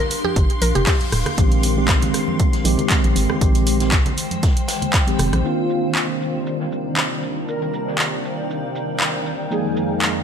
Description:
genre	deep house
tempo	118 BPM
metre	4/4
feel	swing 54% on 16ths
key	C minor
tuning	A4 = 441 Hz
part	mallet-like synth pluck	melody	0.0-1.0 s	G4 to Bb4	-24 LUFS	equal	chorus, digital delay
part	granular cloud pad	texture	0.0-10.2 s	Eb3 to G5	-28 LUFS	left 1 dB	built-in reverb, sidechain pumping
part	string machine, violins	texture	0.0-5.5 s	C6	-32 LUFS	left 1 dB	ensemble chorus
part	punchy analog drum machine	drums	0.1-10.1 s	handclaps, hi-hat, rim click	-23 LUFS	equal	none
part	vintage drum kit	drums	0.1-10.2 s	hi-hat, shaker, snare drum	-34 LUFS	left 1 dB	sidechain pumping on hats, high-pass filter on hats, low-pass filter on hats, high-pass filter on snare, low-pass filter on snare, sidechain pumping on perc, high-pass filter on perc, low-pass filter on perc, high-pass filter on room, low-pass filter on room
part	congas	percussion	0.2-5.4 s	none	-31 LUFS	right 4 dB	sidechain pumping on perc
part	organ-like FM bass	bass	0.4-5.4 s	D1 to Bb1	-20 LUFS	equal	tube saturation, sidechain pumping
part	electronic kick drum	drums	0.4-5.0 s	none	-18 LUFS	equal	none
part	mellow tine electric piano	stabs	1.4-10.2 s	Eb3 to Ab4	-23 LUFS	right 1 dB	medium stereo tremolo, sidechain pumping, digital delay
part	breathy flute-like synth lead	melody	5.4-9.9 s	F4 to Bb4	-27 LUFS	left 2 dB	tremolo, ensemble chorus
part	warm analog pad	sustained chords	5.4-10.2 s	F2 to G5	-29 LUFS	equal	chorus, sidechain pumping
room	light reverb, small room ambience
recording	none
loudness	-17 LUFS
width	side -8 dB against mid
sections	0.0-5.4 A section; 5.4-10.2 B section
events	none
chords	0.0 Gm7; 1.4 Bb13sus4; 5.4 Cm11; 9.5 Fm11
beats	0.36 0.87 | 1.38 1.89 2.40 2.90 | 3.41 3.92 4.43 4.94 | 5.45 5.96 6.46 6.97 | 7.48 7.99 8.50 9.01 | 9.52 10.02

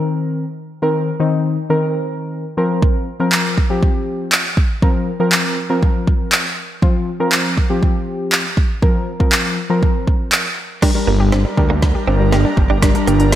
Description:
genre	dance-pop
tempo	120 BPM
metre	4/4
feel	straight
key	unclear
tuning	A4 = 443 Hz
part	warm analog keys	accompaniment	0.0-13.4 s	Eb3 to Bb4	-19 LUFS	left 2 dB	chorus, sidechain pumping
part	deep house drum kit	drums	2.8-13.4 s	crash cymbal, handclaps, hi-hat, kick drum, snare drum	-16 LUFS	right 1 dB	gated reverb
part	airy breathy pad	sustained chords	11.4-13.4 s	G3 to Bb4	-22 LUFS	right 2 dB	chorus, sidechain pumping
part	hollow square pluck	arpeggios	10.8-13.3 s	G3 to G4	-24 LUFS	left 3 dB	chorus, sidechain pumping, digital delay
part	direct-recorded clean electric guitar	riff	10.8-13.4 s	Bb3 to D4	-24 LUFS	right 7 dB	analog chorus
part	fat analog bass	bass	11.1-13.4 s	G1 to D2	-15 LUFS	equal	sidechain pumping
room	moderate lush hall reverb, RT60 1.6 s, digital ambience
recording	bright 1980s-style digital production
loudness	-14 LUFS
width	side -12 dB against mid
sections	0.0-10.8 A section; 10.8-13.4 B section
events	build-up 10.8-13.4; drum fill 10.8-13.4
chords	0.0 Cm7; 2.6 Bbsus2; 10.8 Gm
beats	0.33 | 0.82 1.32 1.82 2.33 | 2.83 3.33 3.83 4.33 | 4.83 5.33 5.83 6.33 | 6.83 7.33 7.83 8.32 | 8.82 9.32 9.82 10.32 | 10.82 11.32 11.82 12.32 | 12.82 13.32

